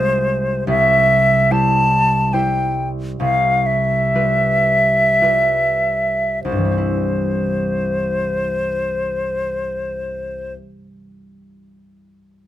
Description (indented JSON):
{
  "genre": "classical, romantic duo for flute and harp",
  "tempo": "46-83 BPM",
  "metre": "3/4",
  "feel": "rubato",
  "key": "C major",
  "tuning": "A4 = 441 Hz",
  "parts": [
    { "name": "bright silver concert flute", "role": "melody", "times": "0.0-10.5 s", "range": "C5 to A5", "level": "-16 LUFS", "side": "left 1 dB", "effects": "none" },
    { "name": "concert harp", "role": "accompaniment", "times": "0.0-10.9 s", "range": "C2 to C5", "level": "-21 LUFS", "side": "right 1 dB", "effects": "none" }
  ],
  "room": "little or no reverb",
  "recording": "close, detailed microphones",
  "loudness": "-15 LUFS",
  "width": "side -13 dB against mid",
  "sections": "0.0-6.5 A section; 6.5-10.2 B section",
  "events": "slowing down 0.0-6.5",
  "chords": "0.0 Fm/C; 0.7 C; 3.2 G7/C; 6.5 C",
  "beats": "| 0.68 1.51 2.34 | 3.20 4.14 5.21 | 6.45 7.68 8.95"
}